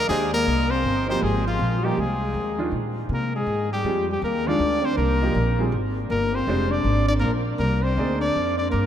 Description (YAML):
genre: modal jazz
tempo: 160 BPM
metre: 4/4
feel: swing 65% on 8ths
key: F dorian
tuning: A4 = 440 Hz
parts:
  - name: clear trumpet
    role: melody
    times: 0.0-8.9 s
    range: F4 to D5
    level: -26 LUFS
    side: equal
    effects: none
  - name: upright bass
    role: bass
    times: 0.0-8.9 s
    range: F1 to C3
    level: -25 LUFS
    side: equal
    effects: none
  - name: mellow trombone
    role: second line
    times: 0.1-8.9 s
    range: F3 to D4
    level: -26 LUFS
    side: left 3 dB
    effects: none
  - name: clear baby grand piano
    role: accompaniment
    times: 0.1-8.2 s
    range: Eb3 to D5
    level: -29 LUFS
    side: right 2 dB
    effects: none
room: wet cathedral reverb, RT60 6.6 s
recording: in a vast, echoing space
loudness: -20 LUFS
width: side -10 dB against mid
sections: 0.5-8.9 A section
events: none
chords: 0.5 Fm11; 6.5 Gm7/F